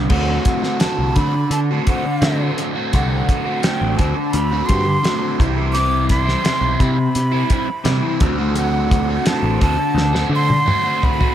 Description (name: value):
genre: psychedelic rock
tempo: 85 BPM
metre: 4/4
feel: straight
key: unclear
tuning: A4 = 436 Hz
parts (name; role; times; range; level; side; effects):
- overdriven electric guitar; riff; 0.0-11.3 s; C3 to F#4; -20 LUFS; equal; phaser, dub echo
- growling picked electric bass; bass; 0.0-10.6 s; A1 to D3; -19 LUFS; equal; overdrive
- breathy mellow silver concert flute; melody; 0.1-11.3 s; F#5 to D6; -23 LUFS; right 2 dB; dub echo
- cloth-damped thuddy drum kit; drums; 0.1-11.3 s; crash cymbal, hi-hat, kick drum, snare drum, toms; -20 LUFS; equal; none
room: light reverb, small room ambience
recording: echo-heavy mix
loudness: -15 LUFS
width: side -11 dB against mid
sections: 0.1-11.3 A section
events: drum fill 10.0-11.3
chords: 0.1 D7; 5.4 Cmaj7; 8.2 D7